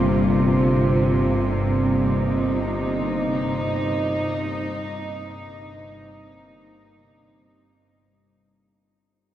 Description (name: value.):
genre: dark ambient drone.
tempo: free time.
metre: none.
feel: none.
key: unclear.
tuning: A4 = 440 Hz.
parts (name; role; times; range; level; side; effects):
warm studio cello section; sustained chords; 0.0-8.5 s; G2 to F4; -21 LUFS; right 1 dB; none.
bowed-like drone; drone; 0.0-8.6 s; G1 to G2; -26 LUFS; left 1 dB; built-in reverb.
room: wet huge ambient reverb, RT60 8.4 s.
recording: dark, warm production.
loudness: -20 LUFS.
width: side -12 dB against mid.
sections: 0.0-8.5 A section.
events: fade-out 0.0-8.5.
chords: 0.0 Bbsus2/G.